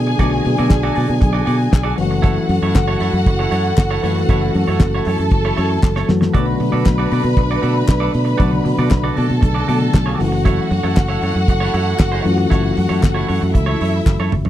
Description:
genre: disco.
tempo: 117 BPM.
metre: 4/4.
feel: straight.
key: F# minor.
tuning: A4 = 440 Hz.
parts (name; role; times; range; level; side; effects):
warm studio string section; second line; 0.0-14.3 s; E4 to B5; -24 LUFS; left 1 dB; none.
tine electric piano; accompaniment; 0.0-14.5 s; C#3 to A4; -22 LUFS; left 5 dB; phaser.
mellow French horn section; sustained chords; 0.0-14.4 s; F#3 to A4; -25 LUFS; right 4 dB; stereo widening.
fingered electric bass; bass; 0.0-14.5 s; F#1 to B2; -18 LUFS; equal; none.
semi-hollow electric guitar; accompaniment; 0.1-14.5 s; E4 to D5; -26 LUFS; right 6 dB; none.
damped 70s drum kit; drums; 0.2-14.5 s; hi-hat, kick drum, snare drum, toms; -14 LUFS; equal; none.
group handclap; percussion; 0.7-14.2 s; none; -30 LUFS; left 6 dB; none.
room: little or no reverb.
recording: dry, close 1970s-style studio recording.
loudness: -14 LUFS.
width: side -12 dB against mid.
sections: 0.0-14.5 A section.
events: drum fill 5.8-6.3, 14.1-14.5.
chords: 0.0 Bm7; 2.0 F#m7; 6.3 Bm7; 10.2 F#m7.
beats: | 0.20 0.71 1.22 1.73 | 2.25 2.76 3.27 3.78 | 4.29 4.81 5.32 5.83 | 6.34 6.86 7.37 7.88 | 8.40 8.91 9.42 9.94 | 10.45 10.97 11.48 12.00 | 12.51 13.03 13.54 14.06.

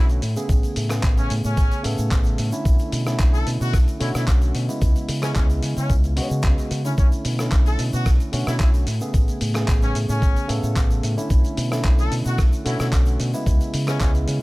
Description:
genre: nu-disco, nu disco.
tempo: 111 BPM.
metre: 4/4.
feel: straight.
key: B dorian.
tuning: A4 = 441 Hz.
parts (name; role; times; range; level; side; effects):
brilliant trumpet section; melody; 0.0-14.1 s; C#4 to A4; -32 LUFS; left 1 dB; vintage 12-bit sampler grit, digital delay.
barky tine electric piano; accompaniment; 0.0-14.4 s; C#3 to A4; -27 LUFS; equal; overdrive, sidechain pumping.
fingered electric bass with an envelope filter; bass; 0.0-14.4 s; A1 to C#3; -22 LUFS; equal; none.
dusty soul sampler-style drum kit; drums; 0.1-14.4 s; handclaps, hi-hat, rim click, shaker; -31 LUFS; equal; none.
tube shaker; percussion; 0.1-14.2 s; none; -43 LUFS; left 3 dB; none.
electronic kick drum; drums; 0.5-14.1 s; none; -18 LUFS; equal; none.
room: little or no reverb.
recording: none.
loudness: -18 LUFS.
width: side -21 dB against mid.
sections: 0.0-14.4 A section.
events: none.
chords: 0.2 Amaj9; 2.7 Bm11; 4.8 C#m7; 7.0 Bm11; 8.9 Amaj9; 11.3 Bm11; 13.5 C#m7.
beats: | 0.49 1.03 1.57 2.11 | 2.65 3.19 3.73 4.28 | 4.82 5.36 5.90 6.44 | 6.98 7.52 8.06 8.60 | 9.14 9.68 10.22 10.76 | 11.30 11.84 12.38 12.92 | 13.46 14.01.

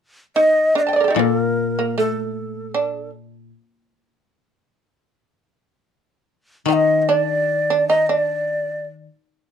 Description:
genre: japanese traditional, Japanese chamber music.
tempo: 76 BPM.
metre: 2/4.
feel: uneven beats, rubato.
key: unclear.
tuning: A4 = 441 Hz.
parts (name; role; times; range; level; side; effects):
breathy hollow shakuhachi; melody; 0.4-3.1, 6.7-8.9 s; A4 to G5; -19 LUFS; equal; none.
shamisen; second line; 0.4-3.1, 6.7-8.8 s; A3 to A5; -22 LUFS; right 5 dB; none.
koto; accompaniment; 1.2-3.5, 6.7-9.1 s; Bb2 to Eb3; -24 LUFS; left 8 dB; none.
room: moderate studio reverb, RT60 0.7 s.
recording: dark, warm production.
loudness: -17 LUFS.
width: side -8 dB against mid.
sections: 0.4-9.5 A section.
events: none.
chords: none.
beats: | 0.37 1.17 | 1.96 2.74 | 3.50 4.27 | 5.05 5.86 | 6.68 7.49 | 8.28.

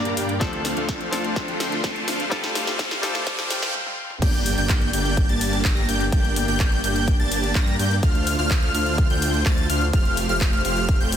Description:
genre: EDM, festival progressive house.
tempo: 126 BPM.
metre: 4/4.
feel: straight.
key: G minor.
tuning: A4 = 440 Hz.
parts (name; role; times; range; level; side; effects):
direct-recorded clean electric guitar; accompaniment; 0.0-3.8 s; G2 to Bb4; -30 LUFS; left 3 dB; sidechain pumping, ping-pong delay.
dark studio string section; sustained chords; 0.0-11.2 s; D3 to D6; -34 LUFS; left 2 dB; none.
dense compressed supersaw; riff; 0.0-11.2 s; A3 to Bb5; -26 LUFS; right 1 dB; sidechain pumping, low-pass filter, ping-pong delay.
wide detuned saw bass; bass; 0.0-11.2 s; F1 to G2; -27 LUFS; equal; chorus, sidechain pumping.
riser and impact; sound effects; 0.2-6.1 s; none; -32 LUFS; equal; none.
big-room dance drum kit; drums; 0.1-11.2 s; crash cymbal, handclaps, hi-hat, snare drum, toms; -28 LUFS; left 1 dB; studio reverb.
electronic kick drum; drums; 0.4-11.0 s; none; -21 LUFS; equal; studio reverb.
wide unison lead; arpeggios; 4.2-11.2 s; F6 to Bb6; -26 LUFS; equal; analog chorus, sidechain pumping, ping-pong delay.
room: light reverb.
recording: dense, heavily limited modern master, high-pass filter.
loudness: -19 LUFS.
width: side -9 dB against mid.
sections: 0.0-4.2 A section; 4.2-11.2 B section.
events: build-up 0.0-4.2; drum fill 0.0-3.7, 3.7-4.2; filter sweep on supersaw synth 0.0-4.2; filter sweep 0.0-4.2; riser 0.2-3.7; break 3.7-4.2; drop 4.2-11.2; impact 4.2-6.1.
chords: 0.4 Dm7; 2.3 Fadd9; 4.2 Gm; 8.0 Dm7; 9.9 Fadd9.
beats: | 0.41 0.89 1.36 1.84 | 2.32 2.79 3.27 3.74 | 4.22 4.70 5.17 5.65 | 6.12 6.60 7.08 7.55 | 8.03 8.51 8.98 9.46 | 9.94 10.41 10.89.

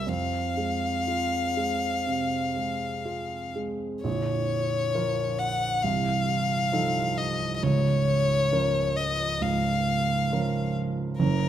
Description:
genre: classical, romantic duo for violin and grand piano.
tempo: 59-69 BPM.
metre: 4/4.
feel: rubato.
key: F minor, Bb minor from 4.0 s.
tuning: A4 = 441 Hz.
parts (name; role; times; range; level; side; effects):
clear violin; melody; 0.0-11.5 s; Bb4 to Gb5; -27 LUFS; left 3 dB; none.
warm grand piano; accompaniment; 0.0-11.5 s; Bb0 to Bb4; -27 LUFS; right 3 dB; none.
room: moderate recital hall reverb, RT60 1.5 s.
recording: close, detailed microphones.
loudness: -24 LUFS.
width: side -10 dB against mid.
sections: 0.0-4.0 A section; 4.0-11.5 B section.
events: none.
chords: 0.1 Fm; 4.0 Bbm; 5.8 F7/C; 7.6 Bbm/Db.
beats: | 0.07 1.08 2.06 3.06 | 4.04 4.95 5.84 6.72 | 7.62 8.52 9.41 10.31 | 11.19.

